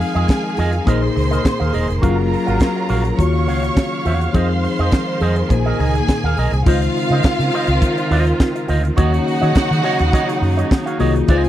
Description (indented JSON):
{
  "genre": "disco",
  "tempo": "104 BPM",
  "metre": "4/4",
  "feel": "straight",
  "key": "Eb dorian",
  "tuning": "A4 = 441 Hz",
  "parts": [
    { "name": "warm studio violin section", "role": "second line", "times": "0.0-11.5 s", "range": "F4 to Db6", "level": "-24 LUFS", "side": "equal", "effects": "none" },
    { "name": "electric guitar with an envelope filter", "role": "accompaniment", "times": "0.0-11.5 s", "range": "F4 to F5", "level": "-24 LUFS", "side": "right 4 dB", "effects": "none" },
    { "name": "tine electric piano", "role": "accompaniment", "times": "0.0-11.5 s", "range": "Bb2 to F5", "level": "-22 LUFS", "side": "left 5 dB", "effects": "wide subtle chorus" },
    { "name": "clear studio string section", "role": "sustained chords", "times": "0.0-11.5 s", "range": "Db3 to F5", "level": "-24 LUFS", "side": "right 1 dB", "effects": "none" },
    { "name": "vintage muted fingered electric bass", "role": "bass", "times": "0.0-11.5 s", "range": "Fb1 to Eb3", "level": "-18 LUFS", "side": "right 1 dB", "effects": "none" },
    { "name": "tight funk drum kit", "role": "drums", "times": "0.0-11.5 s", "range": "crash cymbal, hi-hat, kick drum, snare drum", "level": "-15 LUFS", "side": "equal", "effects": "none" }
  ],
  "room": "little or no reverb",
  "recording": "dry, close 1970s-style studio recording",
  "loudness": "-15 LUFS",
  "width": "side -12 dB against mid",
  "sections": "0.0-6.7 A section; 6.7-11.5 B section",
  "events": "none",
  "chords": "0.0 Fm7; 0.9 Bb7sus4; 2.0 Gbmaj7; 3.2 Ebm9; 4.3 Fm7; 5.5 Bb7sus4; 6.7 Dbmaj9; 9.0 Ebm7"
}